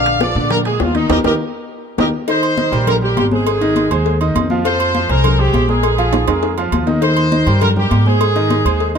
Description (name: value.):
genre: latin, salsa.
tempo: 202 BPM.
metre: 4/4.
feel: straight.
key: Eb major.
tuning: A4 = 441 Hz.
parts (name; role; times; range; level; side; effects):
bright horn section; melody; 0.0-8.9 s; Eb4 to F5; -18 LUFS; right 1 dB; none.
bright grand piano; accompaniment; 0.0-9.0 s; D3 to Ab5; -20 LUFS; right 1 dB; none.
upright bass; bass; 0.0-9.0 s; Ab1 to Bb2; -17 LUFS; equal; none.
congas; percussion; 0.1-9.0 s; none; -22 LUFS; left 5 dB; none.
timbales and agogo bells; percussion; 0.1-9.0 s; none; -24 LUFS; right 13 dB; none.
bongos and cowbell; percussion; 0.2-8.9 s; none; -24 LUFS; left 10 dB; none.
room: light reverb.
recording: dark, warm production.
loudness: -13 LUFS.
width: side -6 dB against mid.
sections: 0.0-2.3 A section; 2.3-9.0 B section.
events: band accent 1.1-2.3; drum fill 1.5-2.3, 6.1-7.0.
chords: 0.0 Bb7; 1.1 Eb; 3.5 Ab; 4.6 Fm; 5.8 Bb5; 7.0 Eb; 8.2 Ab.